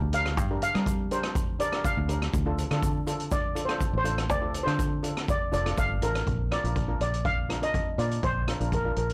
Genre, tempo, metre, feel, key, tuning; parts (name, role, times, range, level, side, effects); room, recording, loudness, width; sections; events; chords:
calypso; 122 BPM; 4/4; straight; Bb major; A4 = 440 Hz
steel pan; melody; 0.0-9.1 s; Bb4 to F5; -32 LUFS; equal
fingered electric bass; bass; 0.0-9.1 s; F1 to G3; -32 LUFS; equal
steel pan; accompaniment; 0.1-9.1 s; D4 to Bb4; -38 LUFS; equal
street-band drum kit; drums; 0.1-9.1 s; hi-hat, kick drum, rim click; -33 LUFS; equal; soft clipping on snare
egg shaker; percussion; 0.1-6.1 s; -50 LUFS; equal
light reverb; blown-out, overdriven recording, overdrive; -28 LUFS; mono
0.0-6.3 A section; 6.3-9.1 B section
steel pan solo 0.0-6.3
0.0 Gm7; 2.3 Dm7; 6.3 Bb